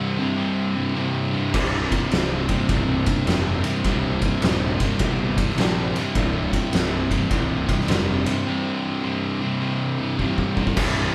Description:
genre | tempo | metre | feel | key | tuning
stoner and doom metal | 104 BPM | 4/4 | swing 65% on 8ths | unclear | A4 = 440 Hz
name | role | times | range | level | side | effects
analog drone | sustained chords | 0.5-11.1 s | C3 to C4 | -38 LUFS | equal | none
distorted electric guitar | riff | 0.0-11.1 s | C2 to Eb4 | -30 LUFS | equal | distortion
thick fuzz guitar | riff | 0.0-11.1 s | C2 to C3 | -29 LUFS | equal | distortion
thick fuzz guitar | riff | 0.0-11.1 s | C2 to C3 | -30 LUFS | equal | distortion
fuzz picked electric bass | bass | 1.5-11.1 s | C1 to Bb1 | -30 LUFS | equal | overdrive
oversized low-tuned drum kit | drums | 1.5-10.9 s | crash cymbal, kick drum, ride cymbal, snare drum | -26 LUFS | equal | none
room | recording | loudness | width
light reverb | band playing live in one room | -22 LUFS | mono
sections
0.0-10.8 A section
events
drum fill 10.2-10.8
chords
0.0 C5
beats
0.38 0.96 | 1.54 2.11 2.69 3.27 | 3.84 4.42 5.00 5.58 | 6.15 6.73 7.31 7.88 | 8.46 9.04 9.62 10.20 | 10.77

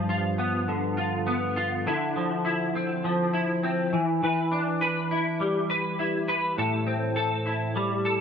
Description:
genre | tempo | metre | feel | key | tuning
indie pop | 102 BPM | 4/4 | swing 60% on 16ths | D dorian | A4 = 440 Hz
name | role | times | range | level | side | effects
semi-hollow electric guitar | solo | 0.0-8.2 s | G2 to B4 | -24 LUFS | equal | ensemble chorus, warbly pitch drift
room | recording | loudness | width
light reverb | rough home demo mix | -24 LUFS | side -7 dB against mid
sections
0.0-8.2 A section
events
none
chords
0.0 G7; 1.9 Dm9; 3.9 Em7; 6.6 Am7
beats
0.09 0.68 1.27 | 1.86 2.44 3.03 3.62 | 4.21 4.80 5.39 5.98 | 6.57 7.16 7.74

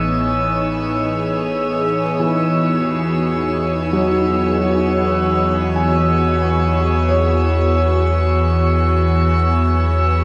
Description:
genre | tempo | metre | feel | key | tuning
ambient | free time | none | none | unclear | A4 = 441 Hz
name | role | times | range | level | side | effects
evolving wavetable pad | sustained chords | 0.0-10.2 s | A2 to C#5 | -20 LUFS | equal | phaser, built-in reverb
deep rumbling drone | bass | 0.0-10.2 s | A1 to E2 | -22 LUFS | equal | built-in reverb, phaser
glass harmonica | texture | 0.0-10.2 s | E6 | -25 LUFS | equal | none
felt-muted upright piano | arpeggios | 2.2-10.2 s | E3 to G#5 | -26 LUFS | equal | tape echo
room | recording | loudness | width
wet shimmer reverb, RT60 7.9 s | dark, warm production | -17 LUFS | mono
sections
0.0-10.2 A section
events
none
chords
0.0 Amaj9#11; 1.8 E69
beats
free time

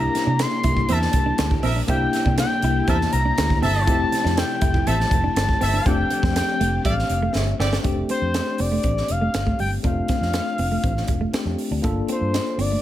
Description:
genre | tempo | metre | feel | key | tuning
polished 1980s jazz-funk pop | 121 BPM | 4/4 | straight | F major | A4 = 438 Hz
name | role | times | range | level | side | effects
expressive synth lead | melody | 0.0-12.8 s | C5 to C6 | -25 LUFS | left 2 dB | chorus
tine electric piano | accompaniment | 0.0-12.8 s | A3 to A4 | -26 LUFS | left 3 dB | medium stereo tremolo, lush chorus
string machine, violins | sustained chords | 0.0-7.8 s | C3 to G4 | -33 LUFS | right 1 dB | none
vintage muted fingered electric bass | bass | 0.0-12.8 s | F1 to C3 | -24 LUFS | equal | none
clean electric guitar | riff | 0.1-12.8 s | G3 to F4 | -30 LUFS | right 4 dB | wide subtle chorus
crisp fusion drum kit | drums | 0.1-12.7 s | hi-hat, kick drum, snare drum | -24 LUFS | right 1 dB | none
warm horn section | second line | 0.9-7.8 s | G4 to E5 | -30 LUFS | right 3 dB | tape echo
room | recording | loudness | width
light reverb, studio reverb | none | -19 LUFS | side -12 dB against mid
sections
0.0-7.8 A section; 7.8-12.8 B section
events
drum fill 7.3-7.8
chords
0.0 C7; 3.9 Fmaj9; 5.9 F69; 11.8 Gm9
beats
0.40 0.89 1.39 | 1.89 2.38 2.88 3.38 | 3.87 4.37 4.87 5.36 | 5.86 6.36 6.85 7.35 | 7.85 8.35 8.84 9.34 | 9.84 10.34 10.84 11.34 | 11.83 12.33

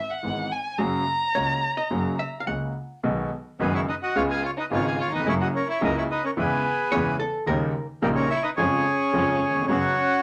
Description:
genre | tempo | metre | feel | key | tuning
tango | 108 BPM | 4/4 | rubato | unclear | A4 = 439 Hz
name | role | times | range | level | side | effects
warm violin | second line | 0.0-10.2 s | A#3 to A#5 | -31 LUFS | equal | none
clear baby grand piano | accompaniment | 0.2-9.9 s | F#1 to G#4 | -30 LUFS | equal | none
clear double bass | bass | 0.2-9.9 s | F#1 to E#2 | -33 LUFS | equal | none
archtop guitar, miked and amplified | second line | 1.4-3.0, 6.9-7.9 s | A4 to F#5 | -33 LUFS | equal | none
bandoneon | melody | 3.6-10.2 s | F#4 to G#5 | -27 LUFS | equal | none
room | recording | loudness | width
moderate club reverb, RT60 0.6 s | none | -25 LUFS | mono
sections
0.0-3.0 A section; 3.0-10.2 B section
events
violin solo 0.0-3.0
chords
0.0 E/G#; 0.8 F#; 3.0 B6; 4.2 C#7; 5.3 F#7; 6.4 C#m7/E; 7.5 D#7; 8.6 C#/E#; 9.7 F#sus4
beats
0.24 | 0.79 1.35 1.91 2.47 | 3.04 3.60 4.16 4.71 | 5.27 5.82 6.37 6.92 | 7.47 8.03 8.58 9.13 | 9.69

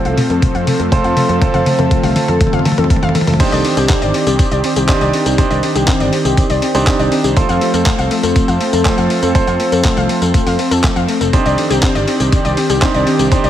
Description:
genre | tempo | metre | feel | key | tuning
italo disco | 121 BPM | 4/4 | straight | C dorian | A4 = 443 Hz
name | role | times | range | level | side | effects
warm analog pad | sustained chords | 0.0-13.5 s | Eb3 to D5 | -18 LUFS | left 1 dB | chorus, vintage 12-bit sampler grit, shimmer reverb
bright baby grand piano | stabs | 0.0-13.5 s | C4 to C5 | -19 LUFS | right 4 dB | low-pass filter, digital delay, shimmer reverb
warbly dusty pluck | arpeggios | 0.1-13.5 s | A3 to F5 | -20 LUFS | left 4 dB | chorus, digital delay, shimmer reverb
picked electric bass | bass | 0.1-13.5 s | F1 to F2 | -20 LUFS | equal | none
dusty soul sampler-style drum kit | drums | 0.1-13.5 s | crash cymbal, handclaps, hi-hat, tambourine, toms | -20 LUFS | left 1 dB | overdrive
electronic kick drum | drums | 0.4-13.4 s | none | -15 LUFS | equal | overdrive
room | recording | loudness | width
light reverb, digital ambience | none | -11 LUFS | side -11 dB against mid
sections
0.0-3.4 A section; 3.4-13.5 B section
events
drum fill 0.0-3.4; filter sweep on synth arpeggio sound 0.0-3.4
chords
0.0 F; 3.4 Cmadd9; 7.4 F; 11.3 Cmadd9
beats
0.42 0.92 | 1.42 1.91 2.41 2.90 | 3.40 3.90 4.39 4.89 | 5.38 5.88 6.38 6.87 | 7.37 7.86 8.36 8.85 | 9.35 9.85 10.34 10.84 | 11.33 11.83 12.32 12.82 | 13.32

